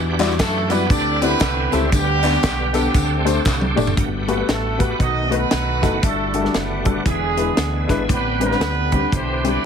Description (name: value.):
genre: uptempo gospel.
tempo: 117 BPM.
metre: 4/4.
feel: swing 62% on 8ths.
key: G major.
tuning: A4 = 442 Hz.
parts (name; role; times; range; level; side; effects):
warm upright piano; accompaniment; 0.0-9.6 s; G2 to D5; -23 LUFS; left 5 dB; none.
bright tonewheel organ; sustained chords; 0.0-9.7 s; D3 to G4; -26 LUFS; right 3 dB; slow rotary speaker, chorus vibrato.
deep dub fingered electric bass; bass; 0.0-9.6 s; E1 to F#2; -24 LUFS; right 1 dB; none.
tight funk drum kit; drums; 0.2-9.5 s; hi-hat, kick drum, snare drum, toms; -22 LUFS; equal; none.
handclaps and tambourine; percussion; 0.2-3.9 s; none; -30 LUFS; left 2 dB; none.
warm horn section; melody; 0.4-9.7 s; G3 to D#5; -22 LUFS; right 2 dB; none.
room: light reverb.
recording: heavily compressed radio sound.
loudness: -16 LUFS.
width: side -7 dB against mid.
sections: 0.0-4.0 A section; 4.0-9.7 B section.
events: drum fill 3.5-4.0.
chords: 0.0 Em9; 0.9 D9sus4; 1.9 G/D; 2.9 D7sus4; 4.0 Gmaj9; 5.0 B7; 6.0 Em11/G; 7.1 E7; 8.1 Am11.